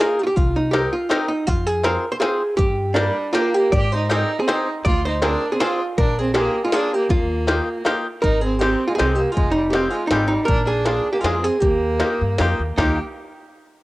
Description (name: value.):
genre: musette waltz.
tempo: 160 BPM.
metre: 3/4.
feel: swing 55% on 8ths, rubato.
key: Eb major.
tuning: A4 = 440 Hz.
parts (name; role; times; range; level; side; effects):
archtop guitar, miked and amplified; melody; 0.0-13.0 s; D4 to D5; -21 LUFS; right 1 dB; cassette tape.
bluegrass banjo; accompaniment; 0.0-13.0 s; Ab3 to C5; -24 LUFS; left 2 dB; none.
glitchy drum kit; drums; 0.0-12.9 s; hi-hat, kick drum, snare drum, toms; -23 LUFS; equal; none.
upright bass; bass; 0.4-13.0 s; F1 to Ab2; -24 LUFS; equal; none.
warm violin; second line; 3.0-13.0 s; G3 to G4; -25 LUFS; right 2 dB; none.
room: light reverb, small room ambience.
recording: home recording on cassette.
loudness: -17 LUFS.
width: side -19 dB against mid.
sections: 0.0-8.2 A section; 8.2-12.8 B section; 12.8-13.8 C section.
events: none.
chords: 0.4 Cm7; 1.5 Fm; 2.6 Gm; 3.7 Abmaj7; 4.9 Dm7b5; 6.0 Bb7; 7.1 Ebadd9; 8.2 Abmaj7; 9.4 Fmadd9; 10.5 Bb7; 11.6 Ebadd9.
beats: | 0.36 0.74 1.11 | 1.48 1.84 2.21 | 2.58 2.96 3.34 | 3.73 4.11 4.49 | 4.86 5.23 5.61 | 5.98 6.35 6.72 | 7.10 7.47 7.85 | 8.23 8.62 9.00 | 9.37 9.75 10.12 | 10.50 10.87 11.25 | 11.63 12.01 12.39 | 12.78.